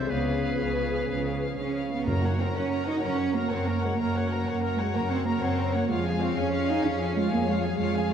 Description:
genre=cinematic, heroic adventure film score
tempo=126 BPM (dotted quarters)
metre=12/8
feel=straight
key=Gb lydian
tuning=A4 = 440 Hz
part: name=warm symphonic violin section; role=melody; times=0.0-8.1 s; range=F5 to Bb5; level=-36 LUFS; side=left 3 dB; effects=none
part: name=clear oboe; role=second line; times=0.0-1.6 s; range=Cb5 to C5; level=-37 LUFS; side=right 1 dB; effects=none
part: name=clear symphonic viola section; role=accompaniment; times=0.0-8.1 s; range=F4 to Db5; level=-35 LUFS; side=right 2 dB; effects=none
part: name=clear trombone section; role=sustained chords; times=0.0-1.9 s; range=E3 to Db4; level=-38 LUFS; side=right 4 dB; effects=none
part: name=mellow French horn section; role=sustained chords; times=0.0-1.6 s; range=Cb4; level=-33 LUFS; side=left 1 dB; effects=none
part: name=concert harp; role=arpeggios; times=0.0-8.1 s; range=Gb2 to Db6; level=-33 LUFS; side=left 9 dB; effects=none
part: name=rich symphonic double bass section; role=bass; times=0.0-8.1 s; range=Db2 to Gb2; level=-32 LUFS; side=right 2 dB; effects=none
part: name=warm chamber cello section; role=bass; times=0.0-8.1 s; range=Db3 to Eb4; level=-29 LUFS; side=right 4 dB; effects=none
part: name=mellow hollow silver concert flute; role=second line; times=0.1-1.6 s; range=Cb5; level=-36 LUFS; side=left 2 dB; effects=none
part: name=warm symphonic violin section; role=second line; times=0.1-8.1 s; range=Bb4 to F5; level=-37 LUFS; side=left 4 dB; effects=none
part: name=timpani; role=percussion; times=2.1-2.5 s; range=Gb2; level=-33 LUFS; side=equal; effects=none
room=moderate scoring stage reverb, RT60 1.6 s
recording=none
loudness=-24 LUFS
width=side -8 dB against mid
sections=0.0-2.1 A section; 2.1-8.1 B section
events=none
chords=0.1 Db7; 2.1 Gb; 5.9 Db/F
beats=| 0.10 0.60 1.09 1.58 | 2.07 2.55 3.03 3.51 | 3.99 4.47 4.95 5.42 | 5.90 6.37 6.85 7.32 | 7.79

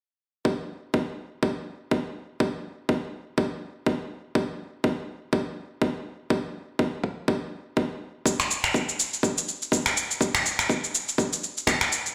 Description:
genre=house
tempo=123 BPM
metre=4/4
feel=swing 57% on 16ths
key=none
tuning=none
part: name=electronic kick drum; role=drums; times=0.5-11.8 s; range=none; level=-26 LUFS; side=equal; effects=high-pass filter on kick
part: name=electronic shaker and finger snaps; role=drums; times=8.3-12.1 s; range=none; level=-26 LUFS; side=equal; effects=none
room=moderate recital hall reverb, RT60 1.5 s, digital ambience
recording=played on a big sound system in a bare room, stone room reverb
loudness=-27 LUFS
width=mono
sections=0.5-12.1 A section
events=none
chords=none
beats=| 0.45 0.94 1.43 1.92 | 2.40 2.89 3.38 3.87 | 4.36 4.84 5.33 5.82 | 6.31 6.79 7.28 7.77 | 8.26 8.74 9.23 9.72 | 10.21 10.70 11.18 11.67

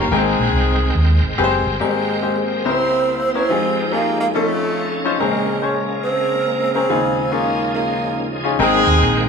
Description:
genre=gospel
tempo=141 BPM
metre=4/4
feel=swing 65% on 8ths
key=Ab major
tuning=A4 = 439 Hz
part: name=mellow horn section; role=melody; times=0.0-1.3, 8.6-9.3 s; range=Ab3 to Bb4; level=-18 LUFS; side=left 1 dB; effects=none
part: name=bright grand piano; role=accompaniment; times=0.0-9.3 s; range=F1 to G5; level=-20 LUFS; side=left 5 dB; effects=none
part: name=bright tonewheel organ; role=sustained chords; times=0.0-9.3 s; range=Db3 to G5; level=-24 LUFS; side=right 2 dB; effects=slow rotary speaker, chorus vibrato
part: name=fingered electric bass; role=bass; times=0.0-1.8, 8.6-9.3 s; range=Gb1 to Eb2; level=-18 LUFS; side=right 1 dB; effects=none
part: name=breathy tenor saxophone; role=melody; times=1.8-8.4 s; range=Ab3 to C4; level=-21 LUFS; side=right 3 dB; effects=none
part: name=dark French horn section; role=sustained chords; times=1.8-8.6 s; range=Db3 to C5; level=-25 LUFS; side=equal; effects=none
room=wet studio reverb, RT60 0.6 s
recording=band playing live in one room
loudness=-16 LUFS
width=side -6 dB against mid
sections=0.0-1.8 A section; 1.8-8.6 B section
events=none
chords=0.1 Abmaj9; 2.6 C7b9; 3.5 Fm9; 4.3 F7b13; 5.2 Bbm9; 6.9 Eb9sus4; 8.6 Abmaj9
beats=| 0.11 0.54 0.96 1.38 | 1.80 2.22 2.65 3.07 | 3.50 3.92 4.35 4.77 | 5.20 5.62 6.05 6.47 | 6.90 7.32 7.75 8.17 | 8.59 9.02

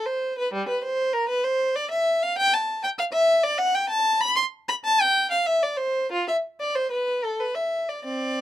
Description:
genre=classical, baroque-style suite movement for unaccompanied violin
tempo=97 BPM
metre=3/4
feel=rubato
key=C major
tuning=A4 = 440 Hz
part: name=rich violin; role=solo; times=0.0-8.4 s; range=G3 to C6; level=-21 LUFS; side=equal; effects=none
room=light reverb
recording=close, detailed microphones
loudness=-21 LUFS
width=side -12 dB against mid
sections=0.0-8.4 A section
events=none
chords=none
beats=| 0.52 1.12 1.74 | 2.35 2.97 3.59 | 4.21 4.83 5.45 | 6.09 6.74 7.38 | 8.04

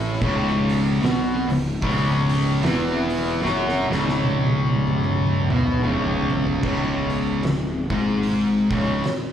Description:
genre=stoner and doom metal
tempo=75 BPM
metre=4/4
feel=swing 58% on 8ths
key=C# minor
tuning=A4 = 441 Hz
part: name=fuzz guitar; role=riff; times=0.0-9.0 s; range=C#2 to B3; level=-21 LUFS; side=left 1 dB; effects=distortion, slapback echo
part: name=fuzz fingered electric bass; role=bass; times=0.0-9.0 s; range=C#1 to B1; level=-28 LUFS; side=right 1 dB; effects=overdrive
part: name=oversized low-tuned drum kit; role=drums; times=0.2-9.3 s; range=crash cymbal, hi-hat, kick drum, snare drum, toms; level=-26 LUFS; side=equal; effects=none
room=studio ambience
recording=live gig heard through the venue's PA, club reverb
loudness=-19 LUFS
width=side -9 dB against mid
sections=0.0-6.6 A section; 6.6-9.3 B section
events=drum fill 3.4-6.6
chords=0.2 C#m; 6.6 C#5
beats=| 0.22 1.02 1.82 2.62 | 3.43 4.23 5.03 5.83 | 6.63 7.43 8.24 9.04

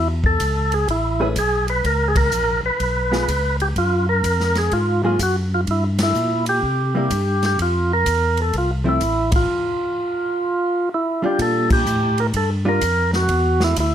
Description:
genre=soul jazz organ trio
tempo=126 BPM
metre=4/4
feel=swing 66% on 8ths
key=unclear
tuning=A4 = 441 Hz
part: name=percussive tonewheel organ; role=melody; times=0.0-13.9 s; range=E4 to B4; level=-20 LUFS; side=right 1 dB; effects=slow rotary speaker, plate reverb
part: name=tonewheel organ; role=bass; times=0.0-13.9 s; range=A1 to C3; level=-21 LUFS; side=equal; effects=overdrive, chorus vibrato, slow rotary speaker
part: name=swinging big-band drum kit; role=drums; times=0.2-13.9 s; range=crash cymbal, hi-hat, kick drum, ride cymbal, snare drum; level=-26 LUFS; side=equal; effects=none
part: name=hollow-body jazz guitar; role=accompaniment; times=1.2-12.8 s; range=F3 to B4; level=-22 LUFS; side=left 1 dB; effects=none
room=light reverb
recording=none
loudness=-17 LUFS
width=side -10 dB against mid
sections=0.0-11.4 A section; 11.4-13.9 B section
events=band accent 2.1, 5.9, 9.3, 11.6; break 9.5-11.4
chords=0.0 Amaj9; 1.8 Db7(no3); 3.8 Gbmaj9; 5.7 Gm; 6.6 C7; 7.6 Fmaj7; 11.4 Bb6; 13.3 Dadd9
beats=0.40 0.88 1.36 | 1.84 2.32 2.80 3.28 | 3.76 4.24 4.71 5.19 | 5.67 6.15 6.63 7.11 | 7.58 8.06 8.54 9.01 | 9.49 9.97 10.44 10.92 | 11.39 11.87 12.34 12.82 | 13.29 13.77

